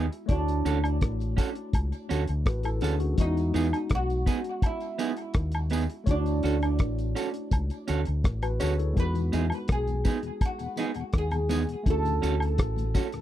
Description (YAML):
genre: lovers rock reggae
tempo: 83 BPM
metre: 4/4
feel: straight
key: unclear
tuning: A4 = 440 Hz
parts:
  - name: oud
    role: melody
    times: 0.0-12.9 s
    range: D4 to B4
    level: -33 LUFS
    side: right 2 dB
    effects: tape echo
  - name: tine electric piano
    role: accompaniment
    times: 0.0-13.2 s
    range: G3 to D#5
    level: -36 LUFS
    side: left 5 dB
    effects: overdrive, fast stereo tremolo
  - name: electric guitar at the edge of break-up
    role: stabs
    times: 0.0-13.1 s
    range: B3 to A4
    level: -30 LUFS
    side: right 8 dB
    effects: none
  - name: fingered electric bass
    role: bass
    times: 0.0-12.9 s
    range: A1 to E2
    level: -28 LUFS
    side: equal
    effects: none
  - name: cloth-damped thuddy drum kit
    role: drums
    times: 0.1-13.2 s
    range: hi-hat, kick drum, rim click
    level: -26 LUFS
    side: equal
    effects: none
  - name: tambourine and woodblock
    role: percussion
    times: 0.7-13.1 s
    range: none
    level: -39 LUFS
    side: equal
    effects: tape echo
  - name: mellow tonewheel organ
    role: accompaniment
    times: 9.1-13.2 s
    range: D2 to D#4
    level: -36 LUFS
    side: left 6 dB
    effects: slow rotary speaker
room: little or no reverb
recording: dry, close 1970s-style studio recording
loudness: -25 LUFS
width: side -12 dB against mid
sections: 0.0-13.2 A section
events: none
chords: 0.3 Dmaj7; 3.2 Emaj7; 6.1 Dmaj7; 9.0 Emaj7; 11.9 Dmaj7